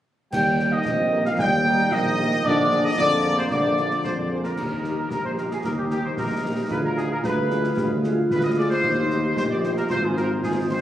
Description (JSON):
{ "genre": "military-style march for wind band", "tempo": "113 BPM", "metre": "2/4", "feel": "straight", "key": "Eb major", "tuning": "A4 = 441 Hz", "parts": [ { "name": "warm trumpet section", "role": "melody", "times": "0.3-10.8 s", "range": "G4 to G5", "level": "-25 LUFS", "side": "equal", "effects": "none" }, { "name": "mellow euphonium", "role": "second line", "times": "0.3-10.8 s", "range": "C3 to G4", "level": "-27 LUFS", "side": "right 1 dB", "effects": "none" }, { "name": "mellow woodwind section", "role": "second line", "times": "0.3-10.8 s", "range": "F4 to G5", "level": "-29 LUFS", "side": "left 1 dB", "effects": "none" }, { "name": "warm tuba", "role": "bass", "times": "0.3-10.8 s", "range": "Ab1 to F2", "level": "-26 LUFS", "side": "right 1 dB", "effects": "none" }, { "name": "clash cymbals, concert bass drum and concert snare drum", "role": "drums", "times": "0.3-10.8 s", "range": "none", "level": "-32 LUFS", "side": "equal", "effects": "none" }, { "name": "mellow French horn section", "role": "accompaniment", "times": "0.6-10.8 s", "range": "Ab3 to Bb4", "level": "-34 LUFS", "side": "left 3 dB", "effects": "none" }, { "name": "dark trombone section", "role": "sustained chords", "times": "0.9-4.2 s", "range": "Bb3 to Eb4", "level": "-31 LUFS", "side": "equal", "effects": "none" } ], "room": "wet concert hall reverb, RT60 2.2 s", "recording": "recorded on a phone in the room, club reverb", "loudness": "-20 LUFS", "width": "side -12 dB against mid", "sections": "0.3-4.6 A section; 4.6-10.8 B section", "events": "none", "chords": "0.3 Eb; 2.5 Bb7; 4.6 Eb; 6.7 Ddim7; 8.8 Eb; 9.9 Fm/Ab" }